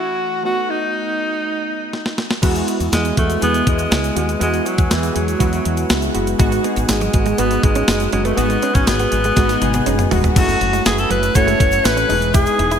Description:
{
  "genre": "1980s-style pop",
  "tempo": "121 BPM",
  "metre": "4/4",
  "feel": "straight",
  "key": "unclear",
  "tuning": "A4 = 440 Hz",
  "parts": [
    { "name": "clear alto saxophone", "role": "melody", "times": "0.0-12.8 s", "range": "E3 to C#5", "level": "-20 LUFS", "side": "equal", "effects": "shimmer reverb, ping-pong delay" },
    { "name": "warm analog keys", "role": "accompaniment", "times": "0.0-12.8 s", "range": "E3 to B5", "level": "-21 LUFS", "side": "equal", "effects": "chorus, shimmer reverb" },
    { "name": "clean 12-bit digital drum machine", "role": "drums", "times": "1.9-12.8 s", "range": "crash cymbal, hi-hat, kick drum, snare drum, tambourine, toms", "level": "-19 LUFS", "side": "equal", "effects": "none" },
    { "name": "woody fretless electric bass", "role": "bass", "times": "2.4-12.8 s", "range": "E1 to E2", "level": "-22 LUFS", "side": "equal", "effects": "analog chorus" },
    { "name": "egg shaker", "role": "percussion", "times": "2.4-12.8 s", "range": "none", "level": "-35 LUFS", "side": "left 9 dB", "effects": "none" },
    { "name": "direct-recorded clean electric guitar", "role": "riff", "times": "6.4-12.8 s", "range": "F#3 to E4", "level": "-26 LUFS", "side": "right 5 dB", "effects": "analog chorus, shimmer reverb, ping-pong delay" }
  ],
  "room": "moderate lush hall reverb, RT60 1.6 s, digital ambience",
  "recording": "bright 1980s-style digital production",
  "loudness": "-15 LUFS",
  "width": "side -8 dB against mid",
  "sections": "0.0-2.4 A section; 2.4-10.4 B section; 10.4-12.8 C section",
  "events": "drum fill 1.9-2.4, 9.4-10.4",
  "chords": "0.4 B7; 2.4 Eadd9; 6.4 G#m7; 10.4 F#m7; 12.1 Emaj7"
}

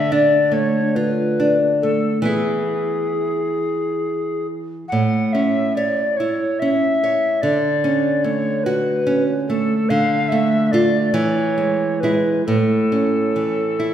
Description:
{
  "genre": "romantic duo for recorder and classical guitar",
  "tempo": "45-50 BPM (dotted quarters)",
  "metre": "6/8",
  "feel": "rubato",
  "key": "A major",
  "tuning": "A4 = 440 Hz",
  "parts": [
    { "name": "mellow tenor recorder", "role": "melody", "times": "0.0-13.9 s", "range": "G#4 to F#5", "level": "-20 LUFS", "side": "left 1 dB", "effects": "none" },
    { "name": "nylon-string guitar", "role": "accompaniment", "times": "0.0-13.9 s", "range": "A2 to C#5", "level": "-18 LUFS", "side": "right 1 dB", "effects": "none" }
  ],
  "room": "wet recital hall reverb, RT60 1.4 s",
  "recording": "heard from further back in the room",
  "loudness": "-16 LUFS",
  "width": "side -10 dB against mid",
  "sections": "0.0-13.9 A section",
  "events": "none",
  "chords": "0.0 Dm; 2.3 E; 4.9 A; 7.4 Dmaj7; 9.9 Dm; 11.1 E; 12.5 A"
}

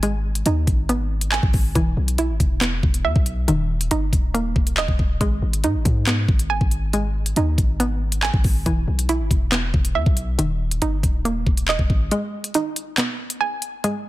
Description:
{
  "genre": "hip hop, drill",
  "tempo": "139 BPM",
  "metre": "4/4",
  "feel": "half-time",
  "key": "G# minor",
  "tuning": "A4 = 440 Hz",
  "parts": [
    { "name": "hollow square pluck", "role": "arpeggios", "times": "0.0-14.1 s", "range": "D#3 to G#5", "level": "-24 LUFS", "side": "right 2 dB", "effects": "chorus, low-pass filter, ping-pong delay" },
    { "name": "hard-hitting 808-style bass", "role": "bass", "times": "0.0-12.1 s", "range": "D#1 to G#2", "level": "-22 LUFS", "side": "equal", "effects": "none" },
    { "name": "drill drum kit", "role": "drums", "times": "0.0-13.9 s", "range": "handclaps, hi-hat, kick drum", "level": "-20 LUFS", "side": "equal", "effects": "none" }
  ],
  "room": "digital ambience",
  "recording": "dense, heavily limited modern master",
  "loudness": "-18 LUFS",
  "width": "side -16 dB against mid",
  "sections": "0.0-14.1 A section",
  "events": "break 12.1-14.1",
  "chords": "0.0 G#m; 1.8 E5; 3.5 D#5; 5.2 G#m; 8.7 E5; 10.4 D#5; 12.1 G#m"
}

